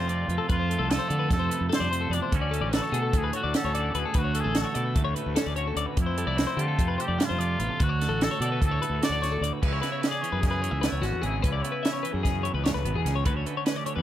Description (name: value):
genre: math rock and midwest emo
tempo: 296 BPM (eighths)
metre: 9/8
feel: straight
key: unclear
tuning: A4 = 440 Hz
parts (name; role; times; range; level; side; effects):
- bright trumpet; melody; 0.0-12.2 s; C#4 to D5; -31 LUFS; equal; slapback echo
- twelve-string electric guitar; accompaniment; 0.0-14.0 s; D2 to F#4; -33 LUFS; right 8 dB; none
- twelve-string electric guitar; arpeggios; 0.0-14.0 s; F#4 to F#5; -32 LUFS; left 9 dB; spring reverb
- fuzz fingered electric bass; bass; 0.0-14.0 s; G#1 to D3; -29 LUFS; equal; overdrive
- compact cocktail drum kit; drums; 0.1-14.0 s; crash cymbal, hi-hat, kick drum, snare drum; -28 LUFS; right 1 dB; none
room: little or no reverb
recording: none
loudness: -24 LUFS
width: side -12 dB against mid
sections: 0.0-9.6 A section; 9.6-14.0 B section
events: none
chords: 0.0 Fmaj7; 2.3 Dmaj7; 6.0 Fmaj7; 7.8 Dmaj7; 9.6 C#m7; 13.3 Dmaj7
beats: 0.09 0.29 | 0.49 0.69 0.90 1.10 1.30 1.51 1.71 1.91 2.12 | 2.32 2.52 2.73 2.93 3.13 3.33 3.54 3.74 3.94 | 4.15 4.35 4.55 4.76 4.96 5.16 5.37 5.57 5.77 | 5.97 6.18 6.38 6.58 6.79 6.99 7.19 7.39 7.60 | 7.80 8.00 8.20 8.41 8.61 8.81 9.02 9.22 9.42 | 9.62 9.82 10.03 10.23 10.43 10.63 10.84 11.04 11.24 | 11.44 11.64 11.85 12.05 12.25 12.45 12.65 12.86 13.06 | 13.26 13.46 13.66 13.87